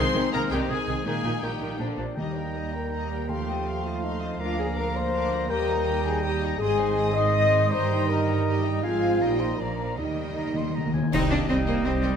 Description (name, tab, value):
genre	classical, dramatic, fast romantic movement for symphony orchestra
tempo	162 BPM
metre	3/4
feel	straight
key	Eb major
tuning	A4 = 440 Hz
part	warm symphonic violin section	melody	0.0-12.1 s	F5 to Eb6	-38 LUFS	left 4 dB	none
part	clear clarinet	second line	0.0-12.2 s	D4 to G5	-36 LUFS	left 2 dB	none
part	mellow hollow silver concert flute	second line	0.0-12.2 s	G4 to Eb6	-36 LUFS	left 2 dB	none
part	warm oboe	second line	0.0-12.2 s	Eb4 to C6	-37 LUFS	left 1 dB	none
part	warm studio violin section	second line	0.0-12.1 s	Bb3 to G5	-39 LUFS	left 5 dB	none
part	mellow bassoon	accompaniment	0.0-12.2 s	Eb3 to Bb3	-36 LUFS	right 1 dB	none
part	rich symphonic viola section	accompaniment	0.0-12.2 s	C3 to G4	-36 LUFS	left 1 dB	none
part	clear French horn section	sustained chords	0.0-12.2 s	Eb3 to Eb5	-28 LUFS	left 3 dB	none
part	mellow trombone section	sustained chords	0.0-11.3 s	Eb3 to Eb4	-33 LUFS	right 4 dB	none
part	dark symphonic double bass section	bass	0.0-12.2 s	G1 to Eb2	-31 LUFS	right 3 dB	none
part	rich symphonic cello section	bass	0.0-12.2 s	D2 to Eb4	-32 LUFS	right 2 dB	none
part	timpani	percussion	2.2-3.8, 10.0-11.6 s	C3 to Eb3	-30 LUFS	left 2 dB	none
part	clash cymbals and concert bass drum	percussion	11.1-11.8 s	none	-33 LUFS	left 1 dB	none
room	wet scoring stage reverb, RT60 1.7 s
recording	minimal, uncompressed stereo recording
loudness	-23 LUFS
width	side -7 dB against mid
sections	0.0-2.2 A section; 2.2-11.1 B section; 11.1-12.2 A section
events	timpani fill 10.0-11.1; band accent 11.1-11.5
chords	0.0 Ab/C; 1.1 Eb/Bb; 1.8 Bb; 2.2 Eb; 3.3 F7/Eb; 4.4 Bb/D; 5.5 Eb; 6.6 Ab; 7.7 Eb/G; 8.8 Fm/Ab; 9.2 Eb/Bb; 9.6 Bb; 10.0 Eb; 11.1 Cm